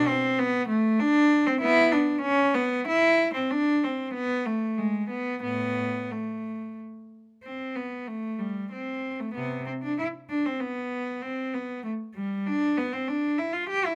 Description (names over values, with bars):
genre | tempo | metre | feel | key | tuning
classical, baroque-style suite movement for unaccompanied cello | 95 BPM | 3/4 | rubato | A minor, C major from 7.5 s | A4 = 442 Hz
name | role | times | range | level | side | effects
rich cello | solo | 0.0-13.9 s | A2 to G4 | -27 LUFS | equal | none
room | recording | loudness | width
light reverb | none | -27 LUFS | mono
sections
0.0-7.5 A section; 7.5-13.9 A section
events
none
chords
none